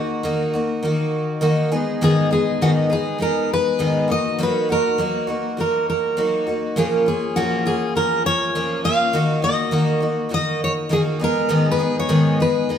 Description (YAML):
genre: pop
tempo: 101 BPM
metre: 4/4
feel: swing 60% on 16ths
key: Eb minor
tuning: A4 = 437 Hz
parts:
  - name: fingerpicked steel-string acoustic guitar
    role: melody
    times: 0.0-12.8 s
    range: Gb4 to F5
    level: -21 LUFS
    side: equal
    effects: none
  - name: picked twelve-string acoustic guitar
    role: accompaniment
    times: 0.0-12.8 s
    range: Ab2 to Ab4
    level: -20 LUFS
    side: equal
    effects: none
room: wet stone room reverb, RT60 1.5 s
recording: band playing live in one room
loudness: -17 LUFS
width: side -8 dB against mid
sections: 0.0-12.8 A section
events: none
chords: 0.0 Ebm; 1.7 Abm; 4.1 Ebm/Gb; 6.8 Bbm; 9.1 Ebm; 11.2 Abm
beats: 0.24 0.83 1.43 | 2.02 2.62 3.21 3.80 | 4.40 4.99 5.58 6.18 | 6.77 7.37 7.96 8.55 | 9.15 9.74 10.34 10.93 | 11.52 12.12 12.71